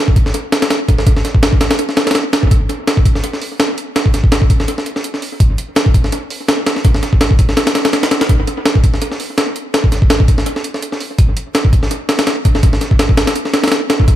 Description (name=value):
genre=drum and bass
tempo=166 BPM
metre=4/4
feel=swing 55% on 16ths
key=none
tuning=none
part: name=breakbeat sampler-style drum kit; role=drums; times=0.1-14.2 s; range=hi-hat, kick drum, snare drum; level=-12 LUFS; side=equal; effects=small room reverb, analog delay
room=light reverb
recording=echo-heavy mix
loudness=-12 LUFS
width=side -13 dB against mid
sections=0.0-14.2 A section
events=none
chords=none